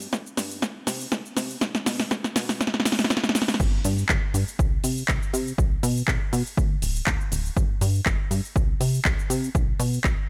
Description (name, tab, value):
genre	filtered disco house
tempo	121 BPM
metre	4/4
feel	swing 54% on 16ths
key	G major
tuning	A4 = 440 Hz
part	plucky analog bass	bass	0.0-10.1 s	D1 to C3	-29 LUFS	equal	sidechain pumping, high-pass filter, low-pass filter
part	house drum kit	drums	0.0-10.2 s	crash cymbal, handclaps, hi-hat, shaker, snare drum	-28 LUFS	equal	sidechain pumping on perc, studio reverb, sidechain pumping on hats, sidechain pumping on cymbals
part	electronic kick drum	drums	0.1-10.2 s	none	-27 LUFS	equal	high-pass filter on kick, studio reverb
room	light reverb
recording	none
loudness	-25 LUFS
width	mono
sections	0.0-3.6 A section; 3.6-10.3 B section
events	build-up 0.0-3.6; drum fill 0.0-3.6; filter sweep on analog synth bass 0.0-3.6; drop 3.6-10.3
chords	none